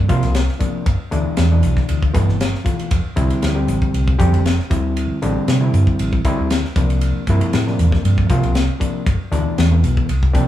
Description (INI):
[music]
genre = electric jazz fusion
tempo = 117 BPM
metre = 4/4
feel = swing 53% on 16ths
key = unclear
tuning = A4 = 439 Hz
[part]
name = overdriven reed electric piano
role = accompaniment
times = 0.0-10.5 s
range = B2 to G5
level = -21 LUFS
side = left 2 dB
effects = none
[part]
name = hollow-body short-scale fingered electric bass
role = bass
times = 0.0-10.5 s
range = F1 to D3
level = -17 LUFS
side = right 1 dB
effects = none
[part]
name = crisp fusion drum kit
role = drums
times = 0.1-10.5 s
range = hi-hat, kick drum, ride cymbal, snare drum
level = -20 LUFS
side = left 1 dB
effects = none
[sound]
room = moderate large studio reverb, RT60 1.2 s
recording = band playing live in one room, small room ambience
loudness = -15 LUFS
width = side -12 dB against mid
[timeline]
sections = 0.0-10.5 A section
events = reed electric piano fill 10.1-10.5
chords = 0.0 C9sus4; 0.9 G9; 2.9 Fsus2; 4.7 Dsus2; 6.8 C9sus4; 9.1 Gadd9